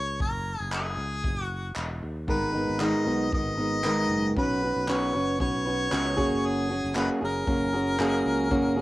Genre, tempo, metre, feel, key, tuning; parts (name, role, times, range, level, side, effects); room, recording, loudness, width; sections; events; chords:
acoustic pop; 116 BPM; 4/4; swing 55% on 16ths; A4 = 440 Hz
warm harmonica; melody; 0.0-8.8 s; G#4 to D#5; -30 LUFS; left 1 dB; cassette tape
sustaining fretless electric bass; bass; 0.0-8.8 s; E1 to D#2; -34 LUFS; equal
unplugged drum kit; drums; 0.2-8.6 s; handclaps, kick drum; -33 LUFS; equal; cassette tape
fingerpicked plugged-in steel-string acoustic guitar; accompaniment; 2.3-8.8 s; G#2 to B4; -25 LUFS; equal
light reverb; home recording on cassette; -24 LUFS; side -17 dB against mid
0.0-8.8 A section
0.0 F#5; 2.3 G#madd9; 4.4 Bsus2; 6.2 F#add9